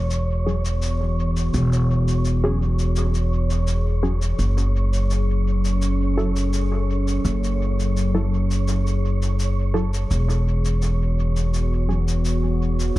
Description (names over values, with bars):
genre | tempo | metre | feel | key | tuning
ambient dub | 84 BPM | 4/4 | straight | unclear | A4 = 440 Hz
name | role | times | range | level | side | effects
warbly tape-like pad | sustained chords | 0.0-13.0 s | E3 to A4 | -27 LUFS | left 1 dB | chorus, built-in reverb
upright bass | bass | 0.0-13.0 s | E1 to F#1 | -20 LUFS | equal | none
wind-like tuned noise texture | texture | 0.0-13.0 s | C#5 | -34 LUFS | right 3 dB | built-in reverb
shaker | drums | 0.1-13.0 s | none | -37 LUFS | left 2 dB | overdrive, dub echo
filtered dub chord stab | stabs | 0.5-12.0 s | F#3 to A4 | -28 LUFS | left 1 dB | chorus, dub echo
room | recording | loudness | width
little or no reverb | echo-heavy mix | -19 LUFS | side -17 dB against mid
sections
0.0-13.0 A section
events
filter sweep on ambient pad 0.0-13.0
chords
0.0 E69; 4.4 F#m7; 10.1 E69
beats
0.10 0.82 | 1.53 2.25 2.96 3.68 | 4.39 5.11 5.82 6.53 | 7.25 7.96 8.68 9.39 | 10.11 10.82 11.53 12.25 | 12.96